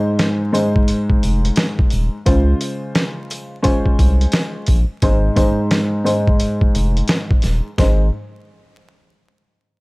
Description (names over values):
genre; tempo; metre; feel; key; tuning
hip hop, boom-bap hip-hop; 87 BPM; 4/4; swing 61% on 16ths; Ab major; A4 = 440 Hz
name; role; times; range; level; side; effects
dark baby grand piano; accompaniment; 0.0-8.1 s; Ab2 to C5; -19 LUFS; equal; low-pass filter
trip hop sampler-style drum kit; drums; 0.2-8.0 s; hi-hat, kick drum, snare drum; -16 LUFS; equal; vintage 12-bit sampler grit
sleigh bells; percussion; 0.2-8.1 s; none; -38 LUFS; right 1 dB; none
saturated sub bass; bass; 1.2-8.1 s; Eb1 to Db2; -16 LUFS; equal; none
room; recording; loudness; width
little or no reverb; dry, gritty hardware recording, vinyl crackle; -14 LUFS; side -24 dB against mid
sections
0.0-7.8 A section; 7.8-9.8 B section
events
none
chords
0.0 Ab; 2.3 Dbmaj7; 5.0 Ab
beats
0.20 0.89 1.58 | 2.27 2.96 3.65 4.33 | 5.03 5.71 6.40 7.09 | 7.78